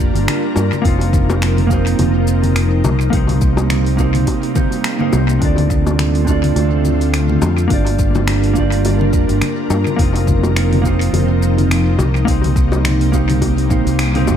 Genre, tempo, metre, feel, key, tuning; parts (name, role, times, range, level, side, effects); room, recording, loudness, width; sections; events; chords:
sunset chillout; 105 BPM; 4/4; swing 57% on 16ths; G minor; A4 = 440 Hz
mellow electric guitar; accompaniment; 0.0-14.4 s; Bb3 to D5; -19 LUFS; moving between left 1 dB and right 7 dB; auto-pan, analog delay
ethereal airy pad; sustained chords; 0.0-14.4 s; C3 to Bb4; -21 LUFS; left 1 dB; ensemble chorus, built-in reverb
fingered electric bass; bass; 0.0-14.4 s; F1 to G2; -16 LUFS; equal
deep house drum kit; drums; 0.2-14.4 s; congas, finger snaps, hi-hat, shaker; -23 LUFS; left 3 dB; overdrive, analog delay
bongos; percussion; 0.6-14.4 s; -27 LUFS; left 4 dB
electronic kick drum; drums; 0.8-13.8 s; -18 LUFS; equal; overdrive
light reverb, digital ambience; echo-heavy mix; -13 LUFS; side -9 dB against mid
0.0-14.4 A section
band accent 14.0
0.0 Gm7; 0.8 F7sus4; 2.8 Cm7; 5.4 Dm7; 7.7 Gm7; 10.0 F7sus4; 12.0 Cm7